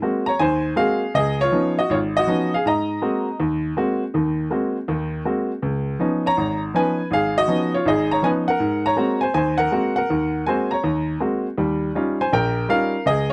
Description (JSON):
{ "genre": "solo jazz", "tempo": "161 BPM", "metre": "4/4", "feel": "swing 66% on 8ths", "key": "Ab mixolydian", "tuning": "A4 = 440 Hz", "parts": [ { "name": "clear baby grand piano", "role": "solo", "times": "0.0-13.3 s", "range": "Ab1 to Bb5", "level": "-21 LUFS", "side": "equal", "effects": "none" } ], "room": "light reverb", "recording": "dry, close 1970s-style studio recording", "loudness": "-21 LUFS", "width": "mono", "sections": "0.0-13.3 A section", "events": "none", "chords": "0.0 Ab9; 1.1 Db9; 2.6 Ab9; 5.6 Db9; 8.6 Ab9; 11.6 Eb9" }